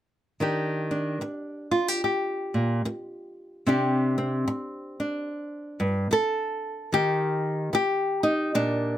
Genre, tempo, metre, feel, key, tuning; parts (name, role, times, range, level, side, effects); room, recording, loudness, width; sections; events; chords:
folk, solo fingerstyle acoustic guitar; 74 BPM; 4/4; swing 62% on 8ths; A4 = 440 Hz
nylon-string guitar; solo; 0.4-9.0 s; G2 to A4; -24 LUFS; equal
light reverb; close, detailed microphones; -24 LUFS; side -12 dB against mid
0.4-6.9 A section; 6.9-9.0 B section
0.4 Ebmaj7; 3.7 Csus2; 6.9 Ebmaj7